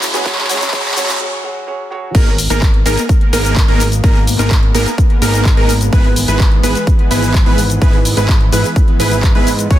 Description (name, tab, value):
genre	EDM, festival progressive house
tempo	127 BPM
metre	4/4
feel	straight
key	G# minor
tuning	A4 = 440 Hz
part	lush unison pad	sustained chords	0.0-9.8 s	C#2 to G#4	-24 LUFS	left 1 dB	chorus, sidechain pumping
part	big-room dance drum kit	drums	0.0-9.8 s	crash cymbal, handclaps, hi-hat, shaker	-20 LUFS	left 1 dB	none
part	riser	sound effects	0.0-1.2 s	none	-22 LUFS	right 2 dB	none
part	felt-muted upright piano	accompaniment	0.1-2.1 s	F#3 to C#5	-24 LUFS	right 2 dB	sidechain pumping, dub echo
part	big supersaw lead	riff	0.1-9.8 s	G#3 to C#5	-20 LUFS	right 1 dB	sidechain pumping, dub echo
part	electronic kick drum	drums	0.3-9.8 s	none	-11 LUFS	equal	none
part	wide unison lead	arpeggios	2.1-9.8 s	A#4 to C#5	-20 LUFS	right 1 dB	sidechain pumping, dub echo
part	fat analog bass	bass	2.1-9.8 s	F#1 to G#2	-17 LUFS	equal	sidechain pumping
room	digital ambience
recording	dense, heavily limited modern master, high-pass filter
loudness	-10 LUFS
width	side -13 dB against mid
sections	0.0-2.1 A section; 2.1-9.8 B section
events	build-up 0.0-2.1; drum fill 0.0-1.2; riser 0.0-1.2; filter sweep 0.0-2.1; break 1.2-2.1; drop 2.1-9.8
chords	0.0 C#m; 2.1 G#madd9; 5.9 E/G#